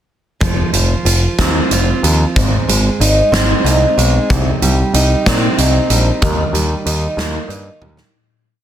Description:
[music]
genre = quiet-loud alternative rock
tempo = 62 BPM (dotted quarters)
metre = 6/8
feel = straight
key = unclear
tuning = A4 = 437 Hz
[part]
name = fingerpicked steel-string acoustic guitar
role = arpeggios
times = 0.4-8.1 s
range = Ab2 to F4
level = -17 LUFS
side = right 2 dB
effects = none
[part]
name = growling picked electric bass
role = bass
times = 0.4-8.0 s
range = F1 to Bb2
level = -15 LUFS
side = equal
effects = overdrive
[part]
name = big rock drum kit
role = drums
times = 0.4-8.1 s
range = hi-hat, kick drum, snare drum, toms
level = -17 LUFS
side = equal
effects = none
[sound]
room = small room ambience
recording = dense, heavily limited modern master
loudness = -12 LUFS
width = side -10 dB against mid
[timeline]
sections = 0.4-8.1 verse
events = fade-out 6.2-8.1; drum fill 7.8-8.1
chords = 0.4 F5; 2.4 Ab; 4.3 Cm; 6.2 Eb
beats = | 0.42 1.39 | 2.36 3.33 | 4.30 5.26 | 6.22 7.18

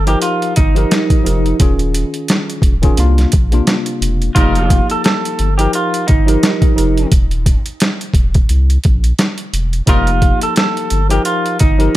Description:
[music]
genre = hip hop, boom-bap hip-hop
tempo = 87 BPM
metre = 4/4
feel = swing 58% on 16ths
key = F mixolydian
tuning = A4 = 445 Hz
[part]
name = electric guitar through a small old amp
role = melody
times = 0.0-12.0 s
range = Eb4 to A4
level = -19 LUFS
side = right 3 dB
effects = high-pass filter, low-pass filter, ping-pong delay
[part]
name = saturated sub bass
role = bass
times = 0.0-11.9 s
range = Eb1 to C2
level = -15 LUFS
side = equal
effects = none
[part]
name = mellow tine electric piano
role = accompaniment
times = 0.1-12.0 s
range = C3 to Bb4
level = -19 LUFS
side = left 2 dB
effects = medium stereo tremolo, high-pass filter, low-pass filter
[part]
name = boom bap sampler-style drum kit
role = drums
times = 0.1-12.0 s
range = hi-hat, kick drum, snare drum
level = -14 LUFS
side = equal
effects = none
[part]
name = mellow horn section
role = stabs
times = 4.4-4.8, 9.9-10.1 s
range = G3 to Bb4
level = -25 LUFS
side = right 1 dB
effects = high-pass filter, low-pass filter, ping-pong delay
[sound]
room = digital ambience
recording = none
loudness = -11 LUFS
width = side -15 dB against mid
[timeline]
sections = 0.0-12.0 A section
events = none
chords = 0.0 F9sus4; 1.6 Eb9sus4; 3.0 C9sus4; 4.4 F9sus4; 7.1 N.C.; 8.5 C7; 9.9 F9sus4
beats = 0.22 0.91 | 1.60 2.29 2.98 3.67 | 4.36 5.05 5.74 6.43 | 7.12 7.81 8.50 9.19 | 9.88 10.56 11.26 11.94

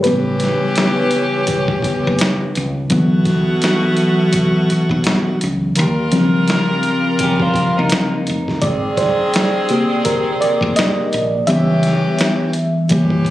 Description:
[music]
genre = R&B, neo-soul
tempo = 84 BPM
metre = 4/4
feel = swing 60% on 16ths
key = unclear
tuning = A4 = 440 Hz
[part]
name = mellow FM electric piano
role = accompaniment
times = 0.0-13.3 s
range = B#2 to E5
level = -16 LUFS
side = equal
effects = chorus
[part]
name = edgy saxophone section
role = stabs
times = 0.0-13.3 s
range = B2 to A#4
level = -20 LUFS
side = equal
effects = none
[part]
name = boom bap sampler-style drum kit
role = drums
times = 0.0-13.3 s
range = hi-hat, kick drum, snare drum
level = -21 LUFS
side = equal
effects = none
[part]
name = woody fretless electric bass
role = bass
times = 0.1-13.3 s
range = E#1 to D#2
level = -20 LUFS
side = equal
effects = none
[part]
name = electric guitar through a small old amp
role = second line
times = 7.2-8.6 s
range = A#3 to G4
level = -21 LUFS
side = right 1 dB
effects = none
[sound]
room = light reverb, digital ambience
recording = recorded on a phone in the room, club reverb, compression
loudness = -14 LUFS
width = side -14 dB against mid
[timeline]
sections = 0.0-13.3 A section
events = FM electric piano solo 0.0-13.3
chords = 0.0 A9; 2.9 D69; 5.8 D#13; 8.6 G#maj9; 11.5 C#m7b5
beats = | 0.05 0.76 1.48 2.19 | 2.91 3.62 4.33 5.05 | 5.76 6.48 7.19 7.91 | 8.62 9.33 10.05 10.76 | 11.48 12.19 12.91

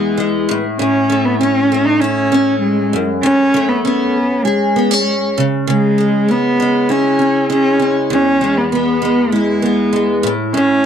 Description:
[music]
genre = acoustic pop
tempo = 98 BPM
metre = 4/4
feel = straight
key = unclear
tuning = A4 = 437 Hz
[part]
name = warm cello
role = melody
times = 0.0-10.9 s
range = G#3 to D#4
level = -15 LUFS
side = equal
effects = slapback echo
[part]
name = picked steel-string acoustic guitar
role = accompaniment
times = 0.0-10.9 s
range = E2 to G#4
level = -16 LUFS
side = left 1 dB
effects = double-tracked left and right
[sound]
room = light reverb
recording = dry, close 1970s-style studio recording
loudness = -12 LUFS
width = side -8 dB against mid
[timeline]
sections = 0.0-10.9 A section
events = none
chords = 0.5 A; 2.9 F#madd9; 5.4 C#m; 8.1 E; 10.2 A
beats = 0.18 | 0.79 1.40 2.01 2.62 | 3.23 3.84 4.45 5.06 | 5.67 6.28 6.89 7.50 | 8.11 8.71 9.32 9.93 | 10.54

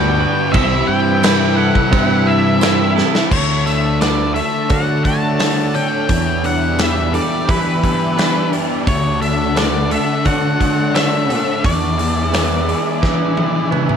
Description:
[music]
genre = rock, shoegaze and dream pop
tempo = 86 BPM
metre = 4/4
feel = straight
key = D major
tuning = A4 = 442 Hz
[part]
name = octave-fuzz lead guitar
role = melody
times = 0.0-13.7 s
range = B4 to A5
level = -21 LUFS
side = left 3 dB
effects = distortion, analog delay
[part]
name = lush unison pad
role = sustained chords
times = 0.0-14.0 s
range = D4 to B5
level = -25 LUFS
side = right 1 dB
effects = chorus
[part]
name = direct-recorded clean electric guitar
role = arpeggios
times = 0.0-14.0 s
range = G4 to C#6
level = -27 LUFS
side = right 13 dB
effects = lush chorus, analog delay
[part]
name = thick fuzz guitar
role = riff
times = 0.0-14.0 s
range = G2 to D5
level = -21 LUFS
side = left 10 dB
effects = distortion, ensemble chorus
[part]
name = twangy electric guitar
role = riff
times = 0.0-14.0 s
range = E2 to F#4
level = -23 LUFS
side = right 14 dB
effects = reverse reverb
[part]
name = fuzz fingered electric bass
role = bass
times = 0.0-13.8 s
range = C2 to E3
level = -19 LUFS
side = equal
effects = overdrive
[part]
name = big rock drum kit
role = drums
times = 0.5-14.0 s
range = crash cymbal, hi-hat, kick drum, snare drum, toms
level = -20 LUFS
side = equal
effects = none
[part]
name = tambourine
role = percussion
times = 1.2-2.8 s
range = none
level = -32 LUFS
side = right 19 dB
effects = none
[sound]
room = light reverb, small room ambience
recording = none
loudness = -13 LUFS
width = side -7 dB against mid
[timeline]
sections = 0.0-3.3 A section; 3.3-14.0 B section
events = drum fill 3.0-3.3, 13.0-14.0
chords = 0.0 Gmaj7; 0.5 Cmaj7; 3.3 Dmaj7; 6.1 Em7; 8.9 Dmaj7; 11.6 E7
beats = | 0.55 1.24 1.93 2.62 | 3.32 4.01 4.70 5.40 | 6.09 6.79 7.48 8.17 | 8.87 9.56 10.26 10.95 | 11.64 12.34 13.03 13.72

